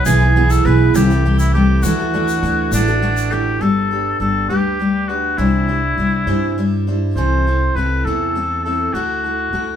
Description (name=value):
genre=acoustic folk duo or small band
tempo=68 BPM (dotted quarters)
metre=6/8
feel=straight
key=G major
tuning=A4 = 442 Hz
part: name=warm cor anglais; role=melody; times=0.0-9.8 s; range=D4 to C5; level=-20 LUFS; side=left 2 dB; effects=none
part: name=picked steel-string acoustic guitar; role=accompaniment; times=0.0-9.8 s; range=B2 to C5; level=-20 LUFS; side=left 2 dB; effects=none
part: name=fingerpicked twelve-string acoustic guitar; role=arpeggios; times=0.0-3.7 s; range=E3 to G#4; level=-20 LUFS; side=right 5 dB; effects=none
part: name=upright bass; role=bass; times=0.1-9.8 s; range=G1 to G2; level=-18 LUFS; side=equal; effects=none
part: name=egg shaker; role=percussion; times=0.1-3.3 s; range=none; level=-29 LUFS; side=left 3 dB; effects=none
room=wet studio reverb, RT60 0.7 s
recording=band playing live in one room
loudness=-14 LUFS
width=side -9 dB against mid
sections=0.0-3.6 A section; 3.6-9.8 B section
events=none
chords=0.1 E/B; 0.9 Am7/C; 1.8 Dadd9; 3.6 G; 5.4 Cadd9; 7.2 Am/C; 8.9 Dadd9